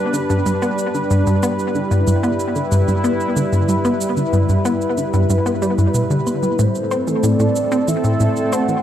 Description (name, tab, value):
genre	ambient, sequencer-driven space music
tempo	93 BPM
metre	4/4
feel	straight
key	unclear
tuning	A4 = 438 Hz
part	sweeping resonant pad	sustained chords	0.0-8.8 s	G3 to B4	-20 LUFS	equal	chorus
part	analog pluck	riff	0.1-8.8 s	G2 to C4	-18 LUFS	equal	chorus, tape echo
part	cabasa and woodblock	percussion	0.1-8.8 s	none	-33 LUFS	right 4 dB	tape echo
part	soft octave-layered synth lead	melody	6.6-8.8 s	C5 to F#5	-23 LUFS	right 1 dB	chorus, phaser, cassette tape, tape echo
room	wet huge ambient reverb, RT60 8.3 s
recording	none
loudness	-15 LUFS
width	side -10 dB against mid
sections	0.0-8.8 A section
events	filter sweep on synth arpeggio sound 0.0-8.8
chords	0.0 G; 6.6 Am